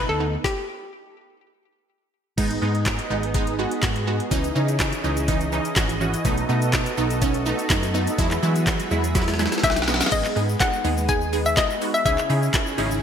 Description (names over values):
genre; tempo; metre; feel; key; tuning
dance-pop; 124 BPM; 4/4; straight; G# minor; A4 = 440 Hz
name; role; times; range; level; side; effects
hollow square pluck; melody; 0.0-1.9, 9.6-13.0 s; G4 to G#5; -24 LUFS; left 4 dB; chorus, digital delay
wide unison pluck; accompaniment; 0.0-12.9 s; E3 to A#4; -25 LUFS; right 2 dB; phaser
hollow-body short-scale fingered electric bass; bass; 0.0-13.0 s; G#1 to E3; -25 LUFS; equal; sidechain pumping
smooth R&B drum kit; drums; 0.4-13.0 s; crash cymbal, handclaps, hi-hat, kick drum, shaker, snare drum; -24 LUFS; equal; gated reverb
filtered supersaw swell; sustained chords; 2.4-13.0 s; C#3 to E5; -30 LUFS; right 1 dB; sidechain pumping
reverse cymbal; sound effects; 9.7-10.1 s; none; -34 LUFS; left 6 dB; none
room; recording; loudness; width
moderate lush hall reverb, RT60 1.6 s, digital ambience; bright 1980s-style digital production; -20 LUFS; side -8 dB against mid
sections
0.0-2.4 A section; 2.4-10.1 B section; 10.1-13.0 C section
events
stop 0.4-2.4; drum fill 9.2-10.1; reverse cymbal 9.7-10.1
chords
0.4 N.C.; 2.4 G#m; 4.3 C#madd9; 6.2 B7; 8.2 Eadd9; 10.1 G#m; 12.1 C#madd9